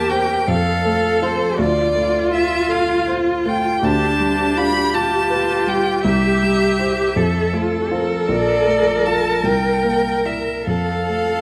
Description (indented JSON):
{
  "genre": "classical, slow romantic movement for piano quartet",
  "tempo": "53 BPM (dotted quarters)",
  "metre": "6/8",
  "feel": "rubato",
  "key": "F major",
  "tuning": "A4 = 440 Hz",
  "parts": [
    { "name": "rich violin", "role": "melody", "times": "0.0-11.4 s", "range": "C5 to B5", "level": "-23 LUFS", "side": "equal", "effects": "none" },
    { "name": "warm cello", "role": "second line", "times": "0.0-11.4 s", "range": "D4 to Bb4", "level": "-24 LUFS", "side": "equal", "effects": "none" },
    { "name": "dark grand piano", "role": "accompaniment", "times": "0.0-11.4 s", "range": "Bb1 to D5", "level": "-24 LUFS", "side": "equal", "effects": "none" },
    { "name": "rich viola", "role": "accompaniment", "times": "0.0-11.4 s", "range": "F4 to Bb4", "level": "-25 LUFS", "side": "equal", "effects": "none" }
  ],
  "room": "moderate scoring stage reverb, RT60 1.9 s",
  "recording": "close, detailed microphones",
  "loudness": "-18 LUFS",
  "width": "mono",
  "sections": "0.0-11.4 A section",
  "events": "none",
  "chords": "0.5 F; 1.6 Dm7; 3.8 G7/D; 6.0 C; 7.2 F; 8.3 Bbmaj7; 9.4 C9; 10.7 F",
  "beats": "0.47 | 1.58 2.69 | 3.82 4.93 | 6.04 7.16 | 8.29 9.45 | 10.67"
}